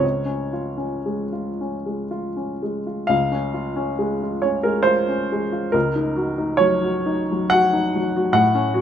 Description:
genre	classical, romantic nocturne for solo piano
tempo	56-75 BPM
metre	3/4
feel	rubato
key	Db major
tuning	A4 = 440 Hz
part	warm upright piano	solo	0.0-8.8 s	Db2 to Gb5	-19 LUFS	equal	none
room	moderate recital hall reverb, RT60 1.3 s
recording	close, detailed microphones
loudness	-19 LUFS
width	side -9 dB against mid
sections	0.0-3.1 A section; 3.1-8.8 A section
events	none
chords	0.0 Db; 5.7 Ebm7/Db

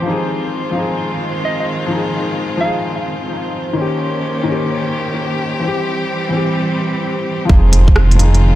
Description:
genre	future garage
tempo	129 BPM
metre	4/4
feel	swing 64% on 16ths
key	F minor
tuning	A4 = 441 Hz
part	felt-muted upright piano	accompaniment	0.0-8.6 s	Eb3 to Ab4	-20 LUFS	left 3 dB	sidechain pumping, dub echo
part	rich chamber string section	sustained chords	0.0-8.6 s	Eb3 to G4	-21 LUFS	equal	sidechain pumping
part	drifting glass-harmonics texture	texture	0.0-8.6 s	C5 to G5	-27 LUFS	right 4 dB	chorus, built-in reverb
part	soft struck synth lead	melody	1.4-2.9 s	Eb5 to F5	-23 LUFS	right 1 dB	chorus, analog delay
part	dark detuned saw bass	bass	7.5-8.6 s	F1	-10 LUFS	equal	sidechain pumping
part	electronic kick drum	drums	7.5-7.9 s	none	-11 LUFS	equal	studio reverb
part	impact	sound effects	7.5-8.6 s	none	-21 LUFS	right 2 dB	none
part	organic electronic drum kit	drums	7.7-8.4 s	hi-hat, rim click	-20 LUFS	right 2 dB	studio reverb
room	light reverb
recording	echo-heavy mix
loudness	-14 LUFS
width	side -14 dB against mid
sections	0.0-7.5 A section; 7.5-8.6 B section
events	impact 7.5-8.6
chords	0.1 Fm7; 3.8 Eb7; 5.6 C/E; 7.5 Fm7

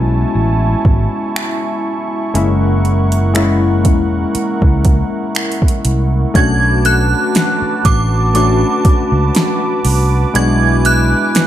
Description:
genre	contemporary R&B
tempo	60 BPM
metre	4/4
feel	swing 54% on 16ths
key	B dorian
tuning	A4 = 440 Hz
part	warm analog keys	accompaniment	0.0-11.5 s	G#3 to F#4	-18 LUFS	left 4 dB	chorus
part	warm analog pad	sustained chords	0.0-11.5 s	E4 to D6	-20 LUFS	right 3 dB	chorus, sidechain pumping
part	fingered electric bass	bass	0.0-11.1 s	E1 to C#2	-14 LUFS	right 1 dB	none
part	smooth R&B drum kit	drums	0.8-11.5 s	finger snaps, hi-hat, kick drum, snare drum	-15 LUFS	right 1 dB	none
part	synth chime	melody	6.4-11.5 s	D6 to G#6	-17 LUFS	right 2 dB	ensemble chorus, tremolo, tape echo
part	glassy wavetable pluck	texture	6.9-10.0 s	A4	-30 LUFS	right 13 dB	none
room	digital ambience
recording	none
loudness	-11 LUFS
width	side -12 dB against mid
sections	0.0-6.4 A section; 6.4-11.5 B section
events	none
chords	0.0 Amaj7; 2.4 F#7; 6.4 Bm7; 10.4 E7/B

